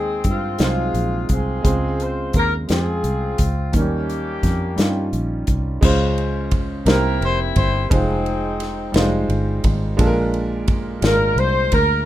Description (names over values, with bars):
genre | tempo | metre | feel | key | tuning
slow gospel | 58 BPM (dotted quarters) | 6/8 | straight | unclear | A4 = 440 Hz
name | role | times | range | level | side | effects
warm horn section | melody | 0.0-12.1 s | Ab3 to C5 | -22 LUFS | left 1 dB | none
warm concert grand piano | accompaniment | 0.0-12.1 s | Bb2 to G5 | -24 LUFS | right 1 dB | none
fingered electric bass | bass | 0.0-12.0 s | F1 to G2 | -22 LUFS | equal | none
natural country drum kit | drums | 0.2-11.9 s | crash cymbal, hi-hat, kick drum, ride cymbal, snare drum | -21 LUFS | equal | none
room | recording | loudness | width
little or no reverb | rough home demo mix | -17 LUFS | side -13 dB against mid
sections
0.0-5.8 A section; 5.8-12.1 B section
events
none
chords
0.0 Abmaj7/Eb; 0.6 Ab7; 1.7 Dbmaj7; 3.7 Eb7; 5.8 Dbmaj7; 6.9 C7; 7.9 Fm7; 10.0 Bb7